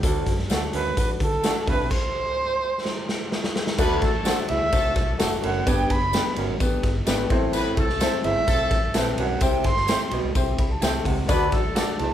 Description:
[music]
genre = uptempo 1960s-style soul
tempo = 128 BPM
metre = 4/4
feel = straight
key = D mixolydian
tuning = A4 = 441 Hz
[part]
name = warm grand piano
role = accompaniment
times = 0.0-12.1 s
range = A3 to B5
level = -28 LUFS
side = left 3 dB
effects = none
[part]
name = warm baritone saxophone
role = riff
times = 0.0-12.1 s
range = D2 to C3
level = -30 LUFS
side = right 5 dB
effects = none
[part]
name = vintage muted fingered electric bass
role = bass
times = 0.0-12.1 s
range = F1 to D3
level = -30 LUFS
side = equal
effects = none
[part]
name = raw garage drum kit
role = drums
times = 0.0-12.1 s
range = crash cymbal, hi-hat, kick drum, ride cymbal, snare drum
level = -24 LUFS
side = equal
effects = none
[part]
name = tambourine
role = percussion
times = 0.0-11.9 s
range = none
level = -37 LUFS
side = left 7 dB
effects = none
[part]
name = electric guitar through a small old amp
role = stabs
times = 0.5-11.9 s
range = A3 to D5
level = -32 LUFS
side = right 4 dB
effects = harmonic tremolo
[part]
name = dark erhu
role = melody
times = 0.8-12.1 s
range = A4 to C6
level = -25 LUFS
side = right 2 dB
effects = none
[part]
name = warm horn section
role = second line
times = 3.8-12.0 s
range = A3 to B4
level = -28 LUFS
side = left 2 dB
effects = none
[sound]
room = moderate large studio reverb, RT60 0.8 s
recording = band playing live in one room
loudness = -20 LUFS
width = side -10 dB against mid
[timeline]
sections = 0.0-3.8 A section; 3.8-12.1 B section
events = stop 1.9-3.8; drum fill 2.9-3.8; grand piano fill 10.4-11.3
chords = 0.0 D; 1.7 C6; 3.8 D; 5.7 G; 7.3 Am; 9.4 C; 11.3 D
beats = | 0.04 0.51 0.97 1.44 | 1.91 2.38 2.85 3.32 | 3.79 4.26 4.73 5.20 | 5.67 6.14 6.61 7.07 | 7.54 8.01 8.48 8.95 | 9.42 9.89 10.36 10.82 | 11.29 11.76

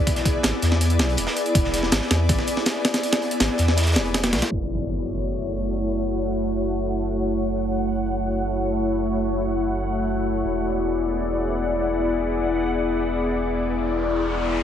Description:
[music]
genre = drum and bass, jungle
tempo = 162 BPM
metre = 4/4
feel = straight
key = F# minor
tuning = A4 = 441 Hz
[part]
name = ethereal airy pad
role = sustained chords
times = 0.0-14.6 s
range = A3 to D5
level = -23 LUFS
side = left 2 dB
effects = ensemble chorus, built-in reverb
[part]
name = breakbeat sampler-style drum kit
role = drums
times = 0.1-4.5 s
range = hi-hat, kick drum, snare drum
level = -22 LUFS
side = equal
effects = none
[part]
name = crunchy breakbeat drum kit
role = drums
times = 0.1-4.5 s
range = hi-hat, snare drum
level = -31 LUFS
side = right 1 dB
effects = high-pass filter on hats, high-pass filter on snare, high-pass filter on room
[part]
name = saturated sub bass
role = bass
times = 0.4-14.6 s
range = E1 to E2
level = -26 LUFS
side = equal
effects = tube saturation
[part]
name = impact and riser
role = sound effects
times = 4.5-6.0, 13.7-14.6 s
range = none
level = -31 LUFS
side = equal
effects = none
[part]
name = backwards swelling texture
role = texture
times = 6.0-14.6 s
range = F#5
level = -34 LUFS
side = equal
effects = built-in reverb
[sound]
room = moderate plate reverb, RT60 1.9 s, digital ambience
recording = heavily compressed radio sound, multiband compression, low-pass filter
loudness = -20 LUFS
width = side -9 dB against mid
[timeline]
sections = 0.0-4.5 A section; 4.5-14.6 B section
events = drop 0.0-4.5; impact 4.5-6.0; filter sweep on ambient pad 4.5-14.6; filter sweep 4.5-14.6; riser 13.7-14.6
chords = 0.0 E7; 4.5 F#m7; 10.4 E7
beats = | 0.07 0.44 0.81 1.18 | 1.55 1.92 2.29 2.66 | 3.03 3.40 3.77 4.14 | 4.51 4.88 5.25 5.62 | 6.00 6.37 6.74 7.11 | 7.48 7.85 8.22 8.59 | 8.96 9.33 9.70 10.07 | 10.44 10.81 11.18 11.55 | 11.92 12.29 12.66 13.03 | 13.40 13.77 14.14 14.51

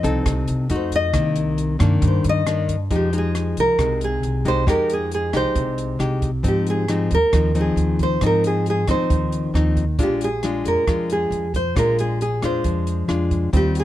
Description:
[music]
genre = bossa nova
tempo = 136 BPM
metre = 4/4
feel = straight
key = unclear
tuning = A4 = 435 Hz
[part]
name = nylon-string guitar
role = melody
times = 0.0-13.8 s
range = G4 to Eb5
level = -22 LUFS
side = right 1 dB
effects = none
[part]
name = nylon-string guitar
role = accompaniment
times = 0.0-13.8 s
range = G2 to A4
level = -22 LUFS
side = left 3 dB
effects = none
[part]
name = upright bass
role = bass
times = 0.0-13.8 s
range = Bb1 to Ab2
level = -23 LUFS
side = right 1 dB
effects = none
[part]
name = compact cocktail drum kit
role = drums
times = 0.0-13.8 s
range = hi-hat, kick drum, rim click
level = -26 LUFS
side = right 1 dB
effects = none
[sound]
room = little or no reverb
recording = close, detailed microphones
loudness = -18 LUFS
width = side -13 dB against mid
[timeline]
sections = 0.0-2.9 A section; 2.9-13.8 B section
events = nylon-string guitar solo 0.0-2.9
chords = 0.0 F7; 0.7 F7b9; 1.1 Cm9; 2.9 Fm9; 6.4 Ab6; 10.0 Bb7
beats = 0.26 0.70 | 1.14 1.58 2.02 2.46 | 2.90 3.35 3.79 4.23 | 4.67 5.12 5.56 6.00 | 6.44 6.89 7.33 7.77 | 8.21 8.66 9.10 9.54 | 9.99 10.43 10.87 11.32 | 11.76 12.20 12.64 13.09 | 13.53

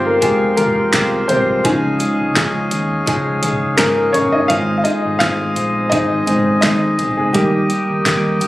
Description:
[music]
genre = piano-driven pop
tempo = 84 BPM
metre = 4/4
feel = swing 56% on 16ths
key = Ab major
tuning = A4 = 439 Hz
[part]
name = warm grand piano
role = accompaniment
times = 0.0-8.5 s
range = F3 to F5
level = -17 LUFS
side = left 1 dB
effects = none
[part]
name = mellow woodwind section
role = sustained chords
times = 0.0-8.5 s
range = Ab3 to Eb6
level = -22 LUFS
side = left 1 dB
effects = none
[part]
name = direct-recorded clean electric guitar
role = riff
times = 0.0-8.5 s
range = F2 to Ab4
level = -21 LUFS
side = right 2 dB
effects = warbly pitch drift
[part]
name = vintage muted fingered electric bass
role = bass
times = 0.0-8.5 s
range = F1 to Ab2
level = -26 LUFS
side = equal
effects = none
[part]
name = pop drum kit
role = drums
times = 0.2-8.5 s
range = handclaps, hi-hat, kick drum, snare drum, toms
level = -20 LUFS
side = equal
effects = none
[sound]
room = moderate studio reverb, RT60 0.9 s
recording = recorded on a phone in the room, club reverb, compression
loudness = -14 LUFS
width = side -16 dB against mid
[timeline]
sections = 0.0-8.5 A section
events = grand piano solo 0.0-8.5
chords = 0.0 Fmadd9; 1.7 Dbadd9; 4.5 Ab; 7.4 Eb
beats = 0.23 0.94 | 1.65 2.36 3.08 3.79 | 4.50 5.21 5.93 6.64 | 7.35 8.06

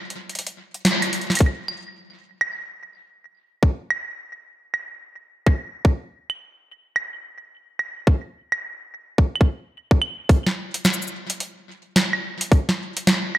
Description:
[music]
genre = IDM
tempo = 108 BPM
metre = 4/4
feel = swing 62% on 16ths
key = none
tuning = none
[part]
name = electro analog drum machine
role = drums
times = 0.1-13.4 s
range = cabasa, claves, hi-hat, snare drum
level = -22 LUFS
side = right 1 dB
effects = studio reverb
[part]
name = electronic kick drum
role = drums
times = 1.4-12.7 s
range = none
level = -15 LUFS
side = equal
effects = overdrive, studio reverb
[sound]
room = light reverb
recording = dark, warm production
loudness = -20 LUFS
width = side -14 dB against mid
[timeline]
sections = 0.0-1.4 A section; 1.4-10.3 B section; 10.3-13.4 C section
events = break 0.0-1.4; band accent 0.8; drum fill 1.1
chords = none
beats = 0.29 0.85 | 1.40 1.96 2.52 3.07 | 3.63 4.18 4.74 5.29 | 5.85 6.40 6.96 7.52 | 8.07 8.63 9.18 9.74 | 10.29 10.85 11.40 11.96 | 12.52 13.07

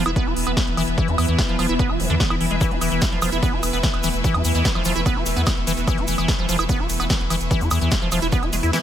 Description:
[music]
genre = psychedelic trance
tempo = 147 BPM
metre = 4/4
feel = straight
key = unclear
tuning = A4 = 440 Hz
[part]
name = evolving wavetable pad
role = sustained chords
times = 0.0-8.8 s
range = E3 to B3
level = -28 LUFS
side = equal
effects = chorus, built-in reverb, sidechain pumping
[part]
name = liquid acid bass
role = riff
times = 0.0-8.8 s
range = D3 to F4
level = -24 LUFS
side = moving between left 4 dB and right 4 dB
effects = chorus, auto-pan, vintage 12-bit sampler grit, sidechain pumping, tape echo
[part]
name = round analog bass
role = bass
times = 0.0-8.7 s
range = E1 to E2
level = -24 LUFS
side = equal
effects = none
[part]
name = rich symphonic string section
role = texture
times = 0.0-8.8 s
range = B3 to E5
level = -29 LUFS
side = left 1 dB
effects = sidechain pumping
[part]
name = big-room dance drum kit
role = drums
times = 0.1-8.8 s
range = hi-hat, ride cymbal, snare drum, woodblock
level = -27 LUFS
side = right 1 dB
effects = none
[part]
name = electronic kick drum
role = drums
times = 0.2-8.4 s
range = none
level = -22 LUFS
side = equal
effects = none
[part]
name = egg shaker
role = percussion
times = 2.6-8.8 s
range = none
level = -32 LUFS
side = left 3 dB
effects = none
[part]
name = resonant blip pluck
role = second line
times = 3.9-5.8 s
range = E3 to B3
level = -37 LUFS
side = right 4 dB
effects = none
[sound]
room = light reverb, digital ambience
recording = none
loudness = -18 LUFS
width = side -10 dB against mid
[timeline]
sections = 0.0-8.8 A section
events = none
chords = 0.0 E5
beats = 0.16 0.57 | 0.98 1.39 1.79 2.20 | 2.61 3.02 3.43 3.83 | 4.24 4.65 5.06 5.47 | 5.88 6.28 6.69 7.10 | 7.51 7.92 8.32 8.73

